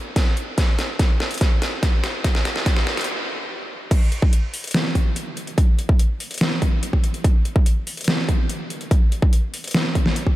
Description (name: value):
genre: dubstep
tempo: 144 BPM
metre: 4/4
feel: half-time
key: none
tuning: none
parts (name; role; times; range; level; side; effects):
- dubstep drum kit; drums; 0.2-10.2 s; crash cymbal, hi-hat, snare drum; -24 LUFS; equal; overdrive, high-pass filter on hats, high-pass filter on snare, high-pass filter on cymbals, high-pass filter on room
- electronic kick drum; drums; 0.2-10.3 s; none; -17 LUFS; equal; overdrive
room: light reverb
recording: none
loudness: -18 LUFS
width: side -16 dB against mid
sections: 0.0-3.9 A section; 3.9-10.4 B section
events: build-up 0.0-3.9; drum fill 0.0-3.1; stop 3.1-3.9; drop 3.9-10.4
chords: none